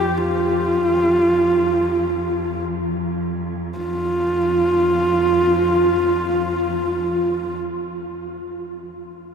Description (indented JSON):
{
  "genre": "mongolian traditional, Mongolian folk",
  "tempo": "free time",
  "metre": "none",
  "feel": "none",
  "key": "unclear",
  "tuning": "A4 = 440 Hz",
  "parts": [
    { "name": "dark horsehead fiddle", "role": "melody", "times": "0.0-7.5 s", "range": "F4 to G4", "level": "-18 LUFS", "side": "right 1 dB", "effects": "none" },
    { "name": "rich cello", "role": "drone", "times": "0.0-7.6 s", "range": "F2", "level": "-27 LUFS", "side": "equal", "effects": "stereo widening" }
  ],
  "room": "wet huge ambient reverb, RT60 8.1 s",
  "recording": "in a vast, echoing space",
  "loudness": "-17 LUFS",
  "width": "side -6 dB against mid",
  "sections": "0.0-3.8 A section; 3.8-8.2 B section",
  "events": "slowing down 0.0-3.8",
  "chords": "none"
}